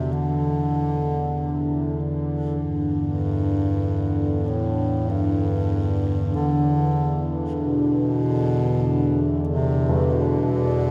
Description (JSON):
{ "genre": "dark ambient drone", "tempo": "free time", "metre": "none", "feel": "none", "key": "E minor", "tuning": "A4 = 440 Hz", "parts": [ { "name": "dark bass clarinet", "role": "melody", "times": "0.0-10.9 s", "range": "G2 to D3", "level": "-26 LUFS", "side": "equal", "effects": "tape echo" }, { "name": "dark analog pad", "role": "sustained chords", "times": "0.0-2.6 s", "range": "none", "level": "barely audible", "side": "none", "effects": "none" }, { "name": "carillon bells", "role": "arpeggios", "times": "0.0-2.2, 9.9-10.9 s", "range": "E3 to A3", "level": "-33 LUFS", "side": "equal", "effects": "tape echo" }, { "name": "analog drone", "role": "drone", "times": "0.0-10.9 s", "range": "E2 to D3", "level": "-26 LUFS", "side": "equal", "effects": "chorus" } ], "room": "wet lush hall reverb, RT60 3.3 s", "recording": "dreamy mix soaked in reverb", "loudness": "-23 LUFS", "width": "mono", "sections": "0.0-2.6 A section; 2.6-10.9 A section", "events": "none", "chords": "0.0 D5/E; 2.6 Em7" }